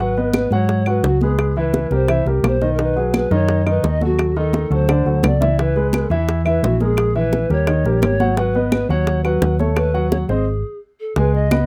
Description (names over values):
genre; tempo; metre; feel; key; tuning
Afro-Cuban jazz; 172 BPM; 4/4; straight; G# minor; A4 = 438 Hz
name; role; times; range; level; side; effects
mellow polished pan flute; melody; 0.0-11.7 s; F#4 to D#5; -25 LUFS; equal; none
warm grand piano; accompaniment; 0.0-11.7 s; D3 to B5; -23 LUFS; equal; none
hollow-body short-scale fingered electric bass; bass; 0.0-11.7 s; G#1 to G#2; -21 LUFS; equal; none
congas; percussion; 0.2-11.7 s; none; -27 LUFS; equal; none
bongos; percussion; 0.3-11.7 s; none; -26 LUFS; equal; none
claves; percussion; 0.3-11.7 s; none; -33 LUFS; equal; none
room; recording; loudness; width
little or no reverb; rough home demo mix; -18 LUFS; mono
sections
0.0-11.2 A section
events
drum fill 4.9-5.6; stop 10.5-11.2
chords
0.0 G#m7; 1.4 C#m7; 2.1 C7; 2.8 B69; 4.2 D#dim; 4.9 D7; 5.6 C#m7; 7.0 C#m13/A#; 7.7 D#7; 8.4 G#m7; 9.8 D#m7b5; 10.5 N.C.